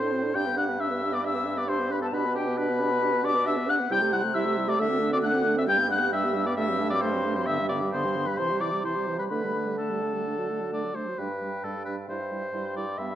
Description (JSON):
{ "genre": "quick classical-period movement for wind quintet", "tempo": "134 BPM", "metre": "4/4", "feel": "straight", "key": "G major", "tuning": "A4 = 440 Hz", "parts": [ { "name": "concert flute", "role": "melody", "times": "0.0-13.2 s", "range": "E5 to G6", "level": "-30 LUFS", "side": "left 4 dB", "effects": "none" }, { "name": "warm oboe", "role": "second line", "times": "0.0-13.2 s", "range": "G4 to G5", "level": "-30 LUFS", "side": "left 1 dB", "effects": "none" }, { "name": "dark clarinet", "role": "accompaniment", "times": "0.0-13.1 s", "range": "A3 to B4", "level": "-34 LUFS", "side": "right 6 dB", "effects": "none" }, { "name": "warm French horn", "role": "accompaniment", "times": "0.0-13.1 s", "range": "D3 to D4", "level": "-32 LUFS", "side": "right 1 dB", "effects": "none" }, { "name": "warm bassoon", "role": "bass", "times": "0.0-13.2 s", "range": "G2 to D3", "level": "-30 LUFS", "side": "right 1 dB", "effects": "none" } ], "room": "moderate recital hall reverb, RT60 1.6 s", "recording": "worn, warbling old tape, cassette tape, warbly pitch drift", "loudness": "-24 LUFS", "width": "side -11 dB against mid", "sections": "0.0-11.2 A section; 11.2-13.2 B section", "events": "none", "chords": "0.4 G; 2.1 G/B; 3.9 Am7/C; 4.8 D7; 5.7 G; 6.6 D7/G; 7.5 G; 8.4 C; 9.3 Dsus4; 10.3 D; 11.2 G; 12.1 C/G", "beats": "| 0.35 0.80 1.25 1.69 | 2.13 2.58 3.02 3.46 | 3.91 4.35 4.79 5.24 | 5.68 6.13 6.58 7.03 | 7.48 7.93 8.38 8.84 | 9.30 9.78 10.25 10.72 | 11.18 11.63 12.08 12.53 | 12.98" }